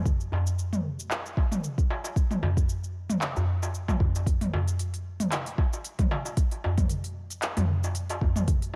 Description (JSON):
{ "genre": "downtempo", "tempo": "114 BPM", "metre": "4/4", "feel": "swing 55% on 16ths", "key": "none", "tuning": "none", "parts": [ { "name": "electronic kick drum", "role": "drums", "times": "0.1-8.6 s", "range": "none", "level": "-28 LUFS", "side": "equal", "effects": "overdrive" }, { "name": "organic electronic drum kit", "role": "drums", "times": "0.1-8.7 s", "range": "handclaps, hi-hat, shaker, toms", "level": "-33 LUFS", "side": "equal", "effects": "overdrive" }, { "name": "darbuka", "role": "percussion", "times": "0.3-8.5 s", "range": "none", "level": "-32 LUFS", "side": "equal", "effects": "none" } ], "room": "little or no reverb", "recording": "none", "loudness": "-28 LUFS", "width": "mono", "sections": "0.0-8.8 A section", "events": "none", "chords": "none", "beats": "| 0.06 0.58 1.11 1.64 | 2.16 2.69 3.21 3.74 | 4.27 4.79 5.32 5.85 | 6.37 6.90 7.43 7.95 | 8.48" }